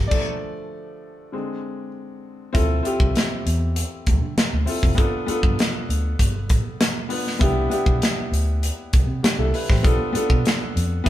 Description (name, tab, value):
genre	lush 1970s-style soul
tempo	99 BPM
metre	4/4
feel	straight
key	unclear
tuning	A4 = 440 Hz
part	clear grand piano	accompaniment	0.0-11.1 s	D3 to D5	-26 LUFS	left 1 dB	none
part	vintage muted fingered electric bass	bass	0.0-11.1 s	F1 to D3	-23 LUFS	equal	none
part	modern studio drum kit	drums	0.1-11.1 s	crash cymbal, hi-hat, kick drum, snare drum	-21 LUFS	equal	none
room	light reverb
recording	band playing live in one room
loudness	-19 LUFS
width	side -13 dB against mid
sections	0.0-2.5 A section; 2.5-11.1 B section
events	grand piano solo 0.0-2.5; stop 0.1-2.5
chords	0.1 Dm; 1.3 Csus2/D; 2.5 Dm7; 5.0 G7; 7.4 Cmaj7; 9.9 Bm7b5